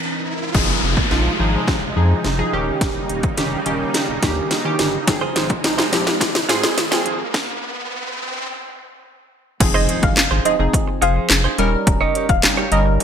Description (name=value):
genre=dance-pop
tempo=106 BPM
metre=4/4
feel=straight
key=F minor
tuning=A4 = 440 Hz
part: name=funky polysynth comp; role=accompaniment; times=0.0-13.0 s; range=Eb3 to Bb4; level=-22 LUFS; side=equal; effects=chorus, sidechain pumping
part: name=riser, downlifter and impact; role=sound effects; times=0.0-11.9 s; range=none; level=-27 LUFS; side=equal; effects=none
part: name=supersaw pad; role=sustained chords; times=0.5-7.3 s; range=C3 to Eb4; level=-27 LUFS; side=right 1 dB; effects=analog chorus, sidechain pumping
part: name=warm sub bass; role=bass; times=0.5-13.0 s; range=Eb1 to Ab2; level=-22 LUFS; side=equal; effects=sidechain pumping
part: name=house drum kit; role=drums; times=0.5-13.0 s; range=crash cymbal, handclaps, hi-hat, kick drum, snare drum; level=-19 LUFS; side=equal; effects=overdrive, gated reverb
part: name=direct-recorded clean electric guitar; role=riff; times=5.1-13.0 s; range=Eb4 to Db5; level=-25 LUFS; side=right 7 dB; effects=lush chorus
part: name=soft round pluck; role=melody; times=9.7-12.8 s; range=Eb5 to F5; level=-22 LUFS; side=right 1 dB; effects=chorus, sidechain pumping, digital delay
room=light reverb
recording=bright 1980s-style digital production, high-pass filter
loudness=-16 LUFS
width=side -8 dB against mid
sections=0.5-9.6 A section; 9.6-13.0 B section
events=break 0.0-0.5; riser 0.0-0.5, 0.5-9.6; build-up 0.5-9.6; drum fill 0.5-7.3; filter sweep 0.5-9.6; stop 7.3-9.6; drop 9.6-13.0; impact 9.6-11.9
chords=0.0 C7; 0.5 Fm7; 2.5 Eb7; 5.1 Ab6; 7.3 N.C.; 9.6 Fm7; 11.6 Eb7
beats=| 0.55 1.11 1.68 2.25 | 2.81 3.38 3.94 4.51 | 5.08 5.64 6.21 6.77 | 7.34 7.91 8.47 9.04 | 9.61 10.17 10.74 11.30 | 11.87 12.44 13.00